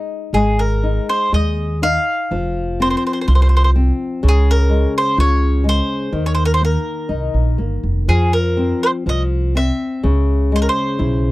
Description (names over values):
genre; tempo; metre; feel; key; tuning
fado-style ballad; 62 BPM; 2/4; rubato; unclear; A4 = 440 Hz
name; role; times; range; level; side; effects
flamenco guitar; accompaniment; 0.0-11.3 s; Db3 to F4; -21 LUFS; left 3 dB; none
mandolin; melody; 0.3-11.3 s; G#4 to F5; -20 LUFS; right 1 dB; none
upright bass; bass; 0.3-11.3 s; F1 to F2; -16 LUFS; equal; none
room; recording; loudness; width
little or no reverb; dry, close 1970s-style studio recording; -14 LUFS; side -18 dB against mid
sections
0.3-11.3 A section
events
break 0.0-0.3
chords
0.0 G#5; 2.3 F5; 4.2 Db; 6.1 Eb5; 8.1 F5; 10.0 Dbm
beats
| 0.32 1.32 | 2.30 3.27 | 4.23 5.17 | 6.12 7.09 | 8.08 9.06 | 10.04 10.99